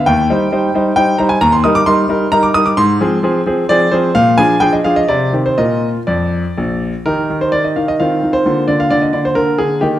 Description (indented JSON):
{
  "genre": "classical-period piano sonatina",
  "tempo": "131 BPM",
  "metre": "3/4",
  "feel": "rubato",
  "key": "Eb major",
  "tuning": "A4 = 440 Hz",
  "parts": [
    { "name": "clear grand piano", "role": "solo", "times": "0.0-10.0 s", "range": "Bb1 to Eb6", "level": "-11 LUFS", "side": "equal", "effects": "none" }
  ],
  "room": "moderate recital hall reverb, RT60 1.4 s",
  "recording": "dark, warm production",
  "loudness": "-11 LUFS",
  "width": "side -12 dB against mid",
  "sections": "0.0-7.1 A section; 7.1-10.0 B section",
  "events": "none",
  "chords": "0.1 Cm/Eb; 1.4 Eb; 2.8 Fm/Ab; 4.2 Bb7; 5.1 Cm; 5.6 Bb; 7.1 Eb; 8.0 F5/Eb; 8.5 Bb/D"
}